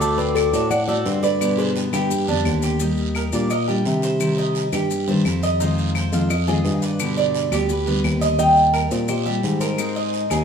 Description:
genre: latin, Cuban son and guajira.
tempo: 172 BPM.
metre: 4/4.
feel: straight.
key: unclear.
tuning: A4 = 440 Hz.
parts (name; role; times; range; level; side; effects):
Cuban tres; melody; 0.0-10.3 s; Bb4 to G5; -24 LUFS; equal; none.
nylon-string guitar; second line; 0.0-2.6, 7.7-10.3 s; G4 to Eb5; -26 LUFS; left 4 dB; none.
picked steel-string acoustic guitar; accompaniment; 0.0-10.4 s; B2 to Bb4; -24 LUFS; left 1 dB; none.
Cuban tres; arpeggios; 0.0-10.4 s; A3 to Eb5; -25 LUFS; right 4 dB; none.
barky tine electric piano; bass; 0.0-10.4 s; D2 to C3; -22 LUFS; equal; overdrive.
guiro; percussion; 0.0-10.4 s; none; -34 LUFS; right 5 dB; none.
maracas; percussion; 0.0-10.4 s; none; -35 LUFS; left 7 dB; none.
claves; percussion; 0.4-10.4 s; none; -33 LUFS; left 6 dB; none.
room: moderate stone room reverb, RT60 1.0 s.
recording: band playing live in one room.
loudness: -18 LUFS.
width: side -7 dB against mid.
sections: 0.0-2.8 A section; 2.8-10.4 B section.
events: none.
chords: 0.0 D7; 1.4 G; 2.8 Ebmaj7; 4.2 Cm; 5.6 Fm7; 7.0 G; 8.4 Eb6; 9.8 Abadd9.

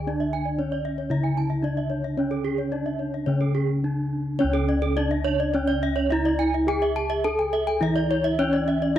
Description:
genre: gamelan.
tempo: 105-118 BPM.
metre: 4/4.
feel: straight.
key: C# pelog.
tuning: A4 = 443 Hz.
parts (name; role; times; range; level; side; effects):
gamelan-type bronze metallophone; melody; 0.0-9.0 s; C#4 to A4-40c; -26 LUFS; right 1 dB; tape echo.
gamelan-type bronze metallophone; arpeggios; 0.0-9.0 s; C#5 to A5-40c; -30 LUFS; left 7 dB; none.
gamelan-type bossed gongs; bass; 0.0-9.0 s; C#2 to G#4-45c; -26 LUFS; left 1 dB; none.
gamelan-type bronze metallophone; arpeggios; 0.2-8.8 s; G#4-45c to A5-40c; -30 LUFS; right 8 dB; none.
room: studio reverb.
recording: dry, close 1970s-style studio recording.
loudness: -22 LUFS.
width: side -11 dB against mid.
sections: 0.0-4.4 A section; 4.4-9.0 B section.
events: none.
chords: none.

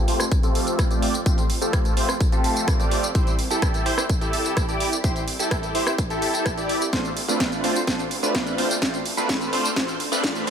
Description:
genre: EDM, festival progressive house.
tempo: 127 BPM.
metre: 4/4.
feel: straight.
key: unclear.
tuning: A4 = 437 Hz.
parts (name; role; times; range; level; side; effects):
big supersaw lead; riff; 0.0-10.5 s; A3 to D5; -24 LUFS; right 1 dB; phaser, sidechain pumping, low-pass filter, digital delay.
wide detuned saw bass; bass; 0.0-10.5 s; C2 to F2; -36 LUFS; left 1 dB; none.
house drum kit; drums; 0.1-10.5 s; hi-hat, rim click, snare drum, tambourine; -26 LUFS; equal; overdrive.
electronic kick drum; drums; 0.3-10.3 s; none; -23 LUFS; equal; none.
room: light reverb.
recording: high-pass filter.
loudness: -20 LUFS.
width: side -8 dB against mid.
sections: 0.0-10.5 A section.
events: build-up 0.0-10.5; filter sweep on supersaw synth 0.0-10.5; filter sweep 0.0-10.5; drum fill 6.9-10.5.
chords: 0.0 Fadd9; 3.2 C; 6.9 Dm7.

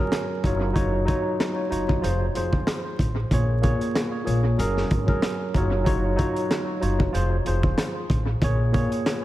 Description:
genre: hip hop, boom-bap hip-hop.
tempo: 94 BPM.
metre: 4/4.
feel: swing 57% on 16ths.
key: Bb minor.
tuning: A4 = 441 Hz.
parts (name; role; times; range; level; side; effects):
tine electric piano; accompaniment; 0.0-9.2 s; Bb2 to Db5; -26 LUFS; equal; medium stereo tremolo, high-pass filter, low-pass filter, analog delay.
upright bass; bass; 0.0-8.8 s; F1 to Bb1; -25 LUFS; equal; none.
crunchy breakbeat drum kit; drums; 0.1-9.2 s; hi-hat, kick drum, rim click, snare drum; -26 LUFS; equal; analog delay.
room: little or no reverb.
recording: echo-heavy mix, vinyl crackle.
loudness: -21 LUFS.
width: side -15 dB against mid.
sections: 0.0-3.3 A section; 3.3-9.2 B section.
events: none.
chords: 0.4 Ebm7/Gb; 2.0 Fm; 3.3 Bbm7; 4.6 Gbadd9; 5.5 Ebm7/Gb; 7.1 Fm; 8.4 Bbm7.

